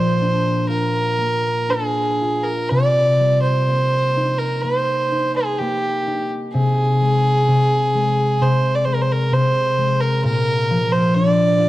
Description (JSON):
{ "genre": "celtic folk, Celtic slow air", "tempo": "58-66 BPM", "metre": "4/4", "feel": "rubato", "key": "unclear", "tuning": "A4 = 440 Hz", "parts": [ { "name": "warm fiddle", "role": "melody", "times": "0.0-11.7 s", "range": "G4 to D5", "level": "-19 LUFS", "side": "right 1 dB", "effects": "none" }, { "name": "concert harp", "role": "accompaniment", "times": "0.0-11.7 s", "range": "Bb2 to G4", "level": "-19 LUFS", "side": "left 1 dB", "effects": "none" } ], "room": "moderate concert hall reverb, RT60 2.4 s", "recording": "dark, warm production", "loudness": "-16 LUFS", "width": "side -16 dB against mid", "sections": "0.0-11.7 A section", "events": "none", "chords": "0.0 Bbadd9; 2.7 Cm7; 6.5 Bb7sus2/C; 10.2 Bb" }